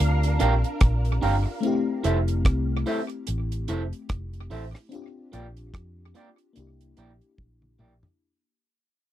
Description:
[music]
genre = lovers rock reggae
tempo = 73 BPM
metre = 4/4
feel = swing 58% on 16ths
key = F major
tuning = A4 = 439 Hz
[part]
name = soft string machine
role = second line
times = 0.0-1.6 s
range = D4 to F5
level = -34 LUFS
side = right 1 dB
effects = phaser, ensemble chorus
[part]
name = FM electric piano with soft pad layer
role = accompaniment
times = 0.0-8.2 s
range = A3 to G4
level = -31 LUFS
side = left 4 dB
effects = chorus, tremolo
[part]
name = vintage muted fingered electric bass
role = bass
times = 0.0-8.0 s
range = F1 to F2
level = -25 LUFS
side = equal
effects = none
[part]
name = deep reggae drum kit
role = drums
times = 0.2-8.2 s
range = hi-hat, kick drum, rim click, toms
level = -24 LUFS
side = equal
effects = tape echo
[part]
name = electric guitar through a small old amp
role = stabs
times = 0.4-8.1 s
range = Bb3 to F5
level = -27 LUFS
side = right 4 dB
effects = wide subtle chorus
[sound]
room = little or no reverb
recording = dry, close 1970s-style studio recording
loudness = -22 LUFS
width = side -12 dB against mid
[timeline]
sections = 0.0-8.2 A section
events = fade-out 0.0-8.2; drum fill 7.4-8.2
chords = 0.0 Bb6; 1.6 Fmaj7; 4.9 Bb6; 6.6 C9

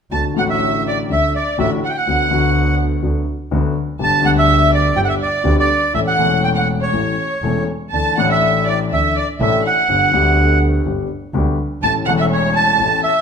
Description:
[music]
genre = tango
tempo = 123 BPM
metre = 4/4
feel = rubato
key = D major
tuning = A4 = 439 Hz
[part]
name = bandoneon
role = melody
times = 0.1-13.2 s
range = C#5 to A5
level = -18 LUFS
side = right 2 dB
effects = none
[part]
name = warm symphonic violin section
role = second line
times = 0.1-13.2 s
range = C#5 to A5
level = -22 LUFS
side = right 2 dB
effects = none
[part]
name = warm grand piano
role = accompaniment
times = 0.1-13.0 s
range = E1 to A4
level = -19 LUFS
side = left 4 dB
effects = none
[part]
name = warm double bass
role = bass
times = 0.1-13.0 s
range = E1 to D2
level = -21 LUFS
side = right 1 dB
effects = none
[sound]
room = wet large studio reverb, RT60 1.3 s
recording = minimal, uncompressed stereo recording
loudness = -14 LUFS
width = side -6 dB against mid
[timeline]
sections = 0.1-13.2 A section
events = none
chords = 0.1 D; 2.1 Bm/D; 4.0 G; 5.9 A; 7.9 Dsus2; 9.9 G; 11.8 A

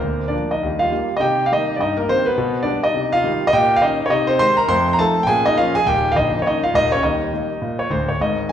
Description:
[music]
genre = jazz, stride piano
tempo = 206 BPM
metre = 4/4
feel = swing 60% on 8ths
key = unclear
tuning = A4 = 440 Hz
[part]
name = warm concert grand piano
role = solo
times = 0.0-8.5 s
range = Bb0 to C6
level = -16 LUFS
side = equal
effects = none
[sound]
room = wet recital hall reverb, RT60 1.7 s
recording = recorded in a church or concert hall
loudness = -16 LUFS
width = side -9 dB against mid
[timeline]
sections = 0.0-8.2 A section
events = none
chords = 0.0 Bb/D; 0.6 Eb; 1.2 Cm7; 2.4 G/B; 2.9 Cm; 3.5 Eb7/Bb; 4.1 Ab/C; 4.7 F7; 5.3 Bbm7; 5.9 Eb7; 7.0 Eb

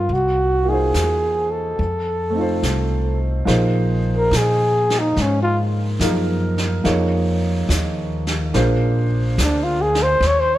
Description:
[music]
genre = jazz ballad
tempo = 71 BPM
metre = 4/4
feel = swing 68% on 8ths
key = unclear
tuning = A4 = 441 Hz
[part]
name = breathy flugelhorn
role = melody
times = 0.0-10.6 s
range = Db4 to Db5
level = -19 LUFS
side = equal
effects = none
[part]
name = warm concert grand piano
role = accompaniment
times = 0.0-10.2 s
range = F3 to Db5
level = -22 LUFS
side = right 1 dB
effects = none
[part]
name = upright bass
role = bass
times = 0.0-10.6 s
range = Bb1 to Bb2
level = -21 LUFS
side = equal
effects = none
[part]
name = vintage brush drum kit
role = drums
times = 0.1-10.6 s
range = brushed snare drum, hi-hat, snare drum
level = -28 LUFS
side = right 1 dB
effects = none
[sound]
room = light reverb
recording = none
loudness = -17 LUFS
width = side -14 dB against mid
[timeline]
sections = 0.0-3.5 A section; 3.5-10.6 B section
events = flugelhorn solo 3.5-10.6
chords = 0.1 Cm7b5; 1.8 F7; 3.5 Bbsus2; 6.8 Eb9sus4; 8.5 Bb7

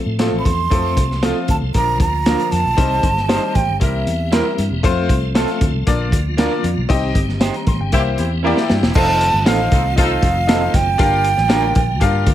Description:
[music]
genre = uptempo 1960s-style soul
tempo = 117 BPM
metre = 4/4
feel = straight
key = unclear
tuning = A4 = 445 Hz
[part]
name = tonewheel organ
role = sustained chords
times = 0.0-12.3 s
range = D3 to A4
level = -28 LUFS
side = right 1 dB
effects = chorus vibrato, fast rotary speaker
[part]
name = vintage muted fingered electric bass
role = bass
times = 0.1-12.3 s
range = E1 to A2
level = -20 LUFS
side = equal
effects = none
[part]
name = bright upright piano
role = accompaniment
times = 0.2-12.3 s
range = F3 to C6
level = -22 LUFS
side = left 6 dB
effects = none
[part]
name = electric guitar through a small old amp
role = stabs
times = 0.2-11.6 s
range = C4 to C5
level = -25 LUFS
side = right 7 dB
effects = slapback echo
[part]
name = crunchy breakbeat drum kit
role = drums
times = 0.2-12.3 s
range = crash cymbal, hi-hat, kick drum, snare drum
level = -18 LUFS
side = equal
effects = none
[part]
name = breathy hollow jazz flute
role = melody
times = 0.4-4.5, 9.0-12.3 s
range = E5 to C6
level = -19 LUFS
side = right 4 dB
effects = none
[part]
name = warm horn section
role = second line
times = 7.9-10.3 s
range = C4 to A4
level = -24 LUFS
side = equal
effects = slapback echo
[sound]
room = light reverb, small room ambience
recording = none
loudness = -14 LUFS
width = side -12 dB against mid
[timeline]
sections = 0.7-8.9 A section; 8.9-12.3 B section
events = band accent 6.9-8.9; drum fill 8.4-8.9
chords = 0.0 F; 1.7 Bb; 2.8 Cm; 3.8 C7; 4.8 F; 5.9 Bb; 6.9 Cm; 7.9 C7; 8.9 F7; 11.0 Gm7

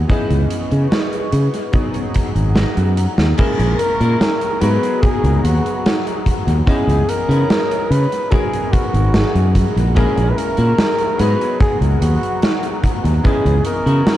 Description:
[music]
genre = vaporwave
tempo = 73 BPM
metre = 4/4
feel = straight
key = G# minor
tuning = A4 = 440 Hz
[part]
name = warm electric grand piano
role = accompaniment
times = 0.0-14.2 s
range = E3 to D#5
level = -24 LUFS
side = left 2 dB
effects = analog chorus, dub echo
[part]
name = warbly tape-like pad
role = sustained chords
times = 0.0-14.2 s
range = B3 to D#6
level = -29 LUFS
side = left 2 dB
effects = chorus, built-in reverb, phaser
[part]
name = fretless electric bass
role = bass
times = 0.0-14.0 s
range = G#1 to C#3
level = -15 LUFS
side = equal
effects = tube saturation
[part]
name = clean electric guitar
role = riff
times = 0.1-14.2 s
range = B3 to B4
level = -28 LUFS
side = left 2 dB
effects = lush chorus, dub echo
[part]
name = huge arena drum kit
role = drums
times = 0.1-14.2 s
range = crash cymbal, hi-hat, snare drum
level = -21 LUFS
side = right 1 dB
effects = dub echo
[part]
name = kick drum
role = drums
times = 0.1-13.4 s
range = none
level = -19 LUFS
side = equal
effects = none
[part]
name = warm flugelhorn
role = melody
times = 3.4-14.2 s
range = F#4 to B4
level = -21 LUFS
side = equal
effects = tape echo
[sound]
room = light reverb, small room ambience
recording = echo-heavy mix, cassette tape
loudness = -14 LUFS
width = side -13 dB against mid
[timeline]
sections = 0.0-3.4 A section; 3.4-14.2 B section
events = drum fill 2.6-3.4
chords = 0.1 C#m9; 1.7 G#m9; 3.4 A#m7b5; 4.6 G#m9; 6.7 C#m9; 8.3 G#m9; 10.0 A#m7b5; 11.2 G#m9; 13.2 C#m9

